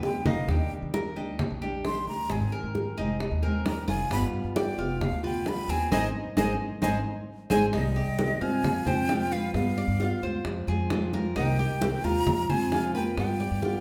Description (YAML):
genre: latin, Cuban son and guajira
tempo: 132 BPM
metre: 4/4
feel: straight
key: C minor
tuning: A4 = 443 Hz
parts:
  - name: breathy jazz flute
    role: melody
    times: 0.0-13.8 s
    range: Eb5 to C6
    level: -35 LUFS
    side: equal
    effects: none
  - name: nylon-string guitar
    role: accompaniment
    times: 0.0-13.8 s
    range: C3 to Ab4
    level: -35 LUFS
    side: equal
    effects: none
  - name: Cuban tres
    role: arpeggios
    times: 0.0-13.8 s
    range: C4 to F5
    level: -38 LUFS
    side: equal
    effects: none
  - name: upright bass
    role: bass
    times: 0.0-13.7 s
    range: F1 to Eb3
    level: -33 LUFS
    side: equal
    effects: none
  - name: bongos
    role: percussion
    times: 0.0-13.8 s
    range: none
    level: -37 LUFS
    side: equal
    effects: none
  - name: congas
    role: percussion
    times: 0.3-13.8 s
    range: none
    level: -35 LUFS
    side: equal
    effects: none
  - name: nylon-string guitar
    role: second line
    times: 7.7-13.8 s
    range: G3 to F4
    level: -36 LUFS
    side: equal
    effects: none
room: wet large studio reverb, RT60 1.5 s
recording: band playing live in one room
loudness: -28 LUFS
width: mono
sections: 0.0-7.7 A section; 7.7-13.8 B section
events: drum fill 0.0-0.5; flute solo 0.0-7.7; band accent 5.9-7.7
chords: 0.5 Ebmaj7; 2.3 Abadd9; 4.1 G7; 5.9 Ab; 7.7 Cm7; 8.6 Fm; 9.5 G7; 10.5 Fm; 11.4 Cm7; 12.3 Fm; 13.2 G7